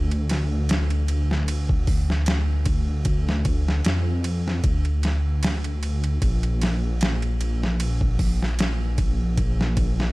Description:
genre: trip hop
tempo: 76 BPM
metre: 4/4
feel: swing 54% on 16ths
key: D minor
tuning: A4 = 438 Hz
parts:
  - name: dark detuned saw bass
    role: bass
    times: 0.0-10.1 s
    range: Bb1 to F2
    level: -22 LUFS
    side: equal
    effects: none
  - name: boom bap sampler-style drum kit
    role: drums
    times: 0.1-10.1 s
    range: hi-hat, kick drum, ride cymbal, snare drum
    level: -25 LUFS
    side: equal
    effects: overdrive
room: little or no reverb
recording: dark, warm production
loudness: -20 LUFS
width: side -21 dB against mid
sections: 0.0-10.1 A section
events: none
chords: none

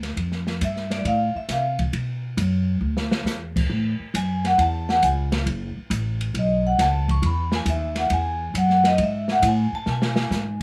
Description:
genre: jazz, small-group swing and bop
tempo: 136 BPM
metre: 4/4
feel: swing 68% on 8ths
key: E major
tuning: A4 = 440 Hz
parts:
  - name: upright bass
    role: bass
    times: 0.0-10.6 s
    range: F#1 to C3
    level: -26 LUFS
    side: equal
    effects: none
  - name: open jazz drum kit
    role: drums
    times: 0.0-10.5 s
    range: crash cymbal, hi-hat, kick drum, ride cymbal, snare drum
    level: -30 LUFS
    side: equal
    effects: none
  - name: vibraphone with medium hard mallets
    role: melody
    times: 0.6-10.6 s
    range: D5 to C#6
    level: -25 LUFS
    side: equal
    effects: none
room: light reverb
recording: none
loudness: -23 LUFS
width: mono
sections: 0.0-10.6 A section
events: vibraphone solo 0.0-10.6; drum fill 2.8-3.3, 9.9-10.3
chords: 0.2 F; 1.9 B5; 2.8 Dsus2; 3.7 A6; 5.5 F#m; 6.3 Bsus2; 7.2 Eadd9

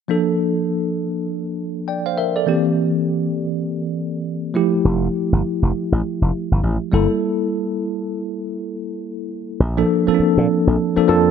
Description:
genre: R&B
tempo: 101 BPM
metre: 4/4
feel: swing 60% on 16ths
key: unclear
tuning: A4 = 440 Hz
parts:
  - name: bell-like tine electric piano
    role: accompaniment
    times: 0.1-11.3 s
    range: E3 to G5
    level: -18 LUFS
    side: equal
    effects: medium stereo tremolo
  - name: slap bass with an envelope filter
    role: bass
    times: 4.8-11.3 s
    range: F1 to Bb2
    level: -18 LUFS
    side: equal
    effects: none
room: moderate lush hall reverb, RT60 2.5 s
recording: dark, warm production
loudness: -18 LUFS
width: side -7 dB against mid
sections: 0.1-9.6 A section; 9.6-11.3 B section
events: break 7.2-9.6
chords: 0.1 Bbmaj7; 2.5 C7; 4.5 Fmaj9; 6.9 Gm69; 9.6 Bbmaj7

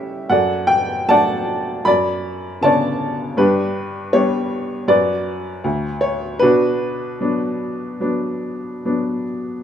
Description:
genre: classical, lyrical solo piano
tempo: 70-80 BPM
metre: 4/4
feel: rubato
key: B minor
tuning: A4 = 438 Hz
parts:
  - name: warm upright piano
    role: solo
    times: 0.0-9.6 s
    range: D2 to B5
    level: -17 LUFS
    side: equal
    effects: none
room: moderate recital hall reverb, RT60 1.4 s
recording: minimal, uncompressed stereo recording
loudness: -17 LUFS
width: side -9 dB against mid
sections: 0.0-9.6 A section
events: none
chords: 0.3 D/F#; 1.9 Bmadd9/F#; 3.4 G; 4.9 Bm/F#; 5.6 N.C.; 6.4 Bm

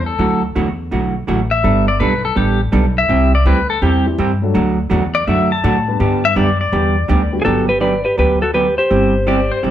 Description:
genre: country, western swing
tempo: 165 BPM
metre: 4/4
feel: swing 66% on 8ths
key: G major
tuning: A4 = 442 Hz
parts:
  - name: pedal steel guitar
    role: second line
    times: 0.0-9.7 s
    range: G4 to A5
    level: -18 LUFS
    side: left 4 dB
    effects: none
  - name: upright bass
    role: bass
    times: 0.0-9.7 s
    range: G1 to A2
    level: -18 LUFS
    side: equal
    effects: none
  - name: vintage hollow-body jazz guitar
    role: accompaniment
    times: 0.2-9.7 s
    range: C3 to A4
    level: -18 LUFS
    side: right 3 dB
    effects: none
  - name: dark upright piano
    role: accompaniment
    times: 4.1-7.4 s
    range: E3 to B4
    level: -24 LUFS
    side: left 4 dB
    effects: none
  - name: clean lap steel guitar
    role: melody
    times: 7.4-9.7 s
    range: F#4 to D5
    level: -16 LUFS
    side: equal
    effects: none
room: moderate studio reverb, RT60 0.9 s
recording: band playing live in one room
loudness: -13 LUFS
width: side -11 dB against mid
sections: 0.0-7.5 A section; 7.5-9.7 B section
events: pedal steel guitar solo 0.0-7.5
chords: 0.2 Dadd9; 1.6 Gadd9; 3.1 C; 4.5 D; 6.0 G; 7.5 Gmaj7; 8.9 C/G

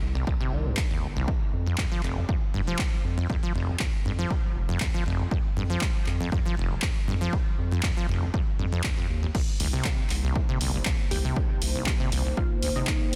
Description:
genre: acid house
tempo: 119 BPM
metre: 4/4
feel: straight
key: C minor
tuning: A4 = 439 Hz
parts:
  - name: saturated sub bass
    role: bass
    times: 0.0-13.2 s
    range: F1 to F2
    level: -31 LUFS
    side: equal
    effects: tube saturation, sidechain pumping
  - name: acid bass, saw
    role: riff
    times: 0.2-12.9 s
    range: F1 to Ab3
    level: -33 LUFS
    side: equal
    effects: tube saturation, subtle chorus, sidechain pumping, analog delay
  - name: electronic kick drum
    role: drums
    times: 0.3-13.0 s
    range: none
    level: -30 LUFS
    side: equal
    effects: none
  - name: punchy analog drum machine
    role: drums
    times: 0.8-13.2 s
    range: crash cymbal, handclaps, hi-hat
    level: -36 LUFS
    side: equal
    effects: none
  - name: dark analog pad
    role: sustained chords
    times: 10.0-13.2 s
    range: Bb3 to C5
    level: -38 LUFS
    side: equal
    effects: chorus, sidechain pumping
  - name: glassy wavetable pluck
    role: melody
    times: 11.1-13.2 s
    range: Eb4 to G4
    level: -40 LUFS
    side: equal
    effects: chorus, cassette tape, tape echo
room: light reverb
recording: dense, heavily limited modern master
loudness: -27 LUFS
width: mono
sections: 0.0-13.2 A section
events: none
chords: 0.0 Cm; 1.3 N.C.; 9.3 Cm7

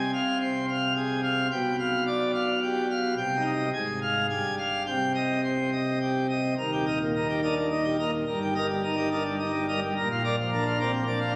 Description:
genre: classical, organ toccata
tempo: 107 BPM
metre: 3/4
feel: straight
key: C minor, Eb major from 6.6 s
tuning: A4 = 440 Hz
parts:
  - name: pipe organ, plenum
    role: solo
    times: 0.0-11.4 s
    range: Eb1 to Ab5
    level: -27 LUFS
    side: equal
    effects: none
room: wet church reverb, RT60 2.6 s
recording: recorded on a phone in the room, club reverb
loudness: -27 LUFS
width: mono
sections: 0.0-6.6 A section; 6.6-11.4 B section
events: none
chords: 0.0 Fm/C; 1.5 G7/B; 3.2 Cm; 3.7 Fm/Ab; 4.3 Fmadd9/G; 4.9 Cm; 6.6 Eb; 8.3 Eb/G; 9.9 Bb

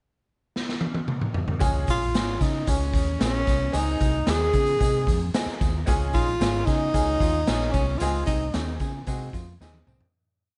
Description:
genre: uptempo 1960s-style soul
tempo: 112 BPM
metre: 4/4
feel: straight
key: Db major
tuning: A4 = 440 Hz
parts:
  - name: raw garage drum kit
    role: drums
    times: 0.6-10.1 s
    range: hi-hat, kick drum, snare drum, toms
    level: -28 LUFS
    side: equal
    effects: none
  - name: clear upright piano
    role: accompaniment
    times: 1.6-10.0 s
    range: Ab3 to Ab4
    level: -35 LUFS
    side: equal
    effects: none
  - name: vintage muted fingered electric bass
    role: bass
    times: 1.6-10.0 s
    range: Ab1 to Db3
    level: -30 LUFS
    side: equal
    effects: none
  - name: tambourine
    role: percussion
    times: 1.6-10.0 s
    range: none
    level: -47 LUFS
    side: equal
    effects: none
  - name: warm tenor saxophone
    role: melody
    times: 1.9-8.8 s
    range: Db4 to Ab4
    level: -28 LUFS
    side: equal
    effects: slapback echo
  - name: hollow-body jazz guitar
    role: riff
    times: 5.9-10.1 s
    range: Ab3 to Ab4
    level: -40 LUFS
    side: equal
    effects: none
room: light reverb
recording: nothing above 11.0 kHz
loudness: -24 LUFS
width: mono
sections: 0.0-1.6 pickup bar; 1.6-10.1 verse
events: drum fill 0.6-1.6, 9.6-10.1; fade-out 8.0-10.1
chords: 0.0 N.C.; 1.6 Db; 3.7 Ab; 5.9 Db; 8.0 Ab

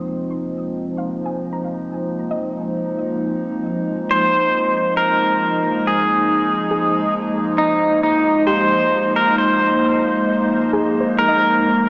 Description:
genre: ambient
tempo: 68 BPM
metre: 4/4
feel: straight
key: unclear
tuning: A4 = 440 Hz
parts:
  - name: warbly tape-like pad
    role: sustained chords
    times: 0.0-11.9 s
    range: F3 to Eb5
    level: -20 LUFS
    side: equal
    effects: chorus, built-in reverb, phaser
  - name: soft round pluck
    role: arpeggios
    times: 0.0-11.9 s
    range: G4 to Eb6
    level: -27 LUFS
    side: equal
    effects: chorus, tape echo
  - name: round analog bass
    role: bass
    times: 0.0-11.9 s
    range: F1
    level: -44 LUFS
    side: equal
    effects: none
  - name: analog drone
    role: drone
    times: 0.0-11.9 s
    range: C3 to C4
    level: -29 LUFS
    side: equal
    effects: chorus
  - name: pedal steel guitar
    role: melody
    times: 4.1-11.9 s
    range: Eb4 to C5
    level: -16 LUFS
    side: equal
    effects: tape echo
room: wet plate reverb, RT60 2.7 s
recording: echo-heavy mix, small speaker sound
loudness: -16 LUFS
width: side -27 dB against mid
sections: 0.0-11.2 A section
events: fade-in on synth pluck 0.0-11.2; fade-out on analog synth bass 0.0-11.2; fade-out on synth drone 0.0-11.2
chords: 0.0 Fm7; 4.1 Ab/F; 11.2 Ab69/F

